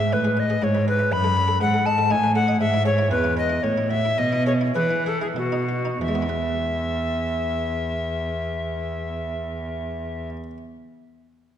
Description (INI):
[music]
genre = classical, baroque-style sonata movement with continuo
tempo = 90-122 BPM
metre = 3/4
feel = rubato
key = E major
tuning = A4 = 440 Hz
[part]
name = bright alto recorder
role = melody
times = 0.0-10.3 s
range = F#4 to B5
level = -24 LUFS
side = left 2 dB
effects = none
[part]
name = buff-stop harpsichord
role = accompaniment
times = 0.0-10.6 s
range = E2 to E5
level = -28 LUFS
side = right 2 dB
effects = none
[part]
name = rich cello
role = bass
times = 0.0-10.3 s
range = E2 to E3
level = -25 LUFS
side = right 1 dB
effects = none
[sound]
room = wet scoring stage reverb, RT60 1.7 s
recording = dark, warm production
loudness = -20 LUFS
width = side -10 dB against mid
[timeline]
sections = 0.0-6.0 A section; 6.0-10.0 B section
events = slowing down 1.9-6.0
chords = 0.0 E/G#; 1.1 B7/F#; 2.6 E/G#; 3.6 F#m7/A; 4.2 E/B; 5.4 B; 6.0 E